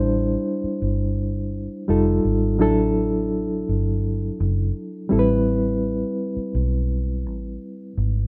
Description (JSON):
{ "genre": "lush 1970s-style soul", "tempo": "84 BPM", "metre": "4/4", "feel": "straight", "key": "unclear", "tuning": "A4 = 440 Hz", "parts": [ { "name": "barky reed electric piano", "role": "accompaniment", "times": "0.0-8.3 s", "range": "F#3 to C5", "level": "-25 LUFS", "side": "equal", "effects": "overdrive, fast tremolo" }, { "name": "vintage muted fingered electric bass", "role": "bass", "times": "0.0-8.3 s", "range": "F1 to B1", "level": "-25 LUFS", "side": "equal", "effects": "none" } ], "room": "digital ambience", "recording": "rough home demo mix", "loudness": "-22 LUFS", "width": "mono", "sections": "0.0-8.3 A section", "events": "none", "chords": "0.0 D9sus4; 1.9 F9; 2.6 E9sus4; 5.1 Cmaj7/A" }